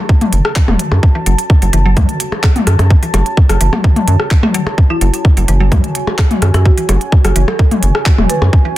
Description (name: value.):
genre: minimal techno.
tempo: 128 BPM.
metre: 4/4.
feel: straight.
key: F# minor.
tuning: A4 = 444 Hz.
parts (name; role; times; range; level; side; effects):
mallet-like synth pluck; riff; 0.0-8.7 s; E3 to A3; -22 LUFS; equal; chorus, sidechain pumping, dub echo.
deep dark ambient pad; texture; 0.0-8.8 s; F#4 to A5; -22 LUFS; right 2 dB; chorus, built-in reverb, sidechain pumping.
electronic kick drum; drums; 0.1-8.6 s; none; -10 LUFS; equal; none.
garage drum kit; drums; 0.2-8.4 s; handclaps, hi-hat; -20 LUFS; right 1 dB; soft clipping on snare.
minimal click drum kit; percussion; 0.2-8.5 s; percussion blips, rim click, toms; -17 LUFS; left 2 dB; overdrive.
rubbery square bass; bass; 0.3-8.5 s; E1 to F#2; -12 LUFS; equal; sidechain pumping.
folk marimba with medium mallets; melody; 4.9-8.8 s; E4 to B4; -23 LUFS; right 1 dB; dub echo.
room: light reverb.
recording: dense, heavily limited modern master.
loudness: -9 LUFS.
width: side -15 dB against mid.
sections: 0.0-8.8 A section.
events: none.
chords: 0.0 F#m.